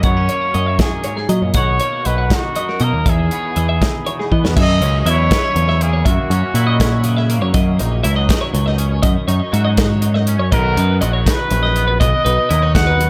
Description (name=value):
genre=math rock and midwest emo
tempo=80 BPM (dotted quarters)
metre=6/8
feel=straight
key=unclear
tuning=A4 = 440 Hz
part: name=clear trumpet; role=melody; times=0.0-7.3, 10.5-13.1 s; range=F#4 to F#5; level=-22 LUFS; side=equal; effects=tape echo
part: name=twangy electric guitar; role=accompaniment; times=0.0-13.1 s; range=E2 to F#4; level=-28 LUFS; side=equal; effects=ensemble chorus, tape echo
part: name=twelve-string electric guitar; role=arpeggios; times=0.0-13.1 s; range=G#4 to F#5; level=-26 LUFS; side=equal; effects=tape echo
part: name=picked electric bass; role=bass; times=0.0-13.1 s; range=A#1 to F#3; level=-18 LUFS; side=equal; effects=none
part: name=modern studio drum kit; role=drums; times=0.0-13.1 s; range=crash cymbal, hi-hat, kick drum, snare drum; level=-21 LUFS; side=equal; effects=tape echo
room=studio reverb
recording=echo-heavy mix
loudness=-16 LUFS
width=mono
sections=0.0-4.6 A section; 4.6-13.1 B section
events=drum fill 4.3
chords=0.0 F#9; 1.5 Bmaj7; 3.1 Emaj7; 4.6 F#7; 7.5 D#m7; 10.5 Bmaj7